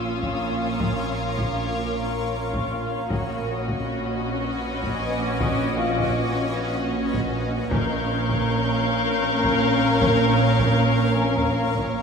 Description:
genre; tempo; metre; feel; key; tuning
cinematic, suspense film score; 78 BPM; 3/4; straight; Bb phrygian; A4 = 437 Hz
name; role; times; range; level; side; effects
muted symphonic violin section; melody; 0.0-12.0 s; D#5 to F5; -32 LUFS; left 3 dB; none
muted studio violin section; second line; 0.0-12.0 s; F4 to Bb4; -28 LUFS; left 3 dB; none
muted symphonic viola section; accompaniment; 0.0-12.0 s; Db4; -29 LUFS; left 2 dB; none
granular cloud pad; sustained chords; 0.1-12.0 s; C#4 to F5; -30 LUFS; equal; built-in reverb, phaser
muted symphonic cello section; bass; 0.0-12.0 s; Bb2; -28 LUFS; right 4 dB; none
muted symphonic double bass section; bass; 0.0-12.0 s; Bb1; -29 LUFS; right 4 dB; none
felt-muted upright piano; texture; 0.0-12.0 s; F4 to Ab5; -35 LUFS; left 3 dB; none
muted symphonic violin section; texture; 0.0-11.9 s; B5 to G6; -32 LUFS; left 4 dB; none
taiko ensemble; drums; 0.2-12.0 s; none; -30 LUFS; left 1 dB; none
room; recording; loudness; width
moderate scoring stage reverb, RT60 1.9 s; minimal, uncompressed stereo recording; -20 LUFS; side -6 dB against mid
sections
0.0-12.0 A section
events
none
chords
0.0 Bbm; 3.1 Badd9/Bb; 7.7 Bbm

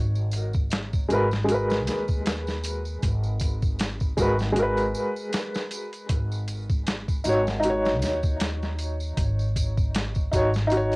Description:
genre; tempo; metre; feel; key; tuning
trip hop; 78 BPM; 4/4; swing 56% on 16ths; G# minor; A4 = 440 Hz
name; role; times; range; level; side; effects
upright bass; bass; 0.0-11.0 s; G#1 to D#2; -28 LUFS; equal; none
tambourine; percussion; 0.2-11.0 s; none; -41 LUFS; right 2 dB; none
boom bap sampler-style drum kit; drums; 0.3-11.0 s; hi-hat, kick drum, snare drum; -26 LUFS; equal; none
felt-muted upright piano; accompaniment; 1.1-11.0 s; G#3 to C#5; -26 LUFS; equal; tremolo, low-pass filter, cassette tape, tape echo
room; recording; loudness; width
little or no reverb; home recording on cassette; -23 LUFS; side -27 dB against mid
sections
0.0-11.0 A section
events
none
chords
0.0 G#m9; 6.1 D#m7/G#

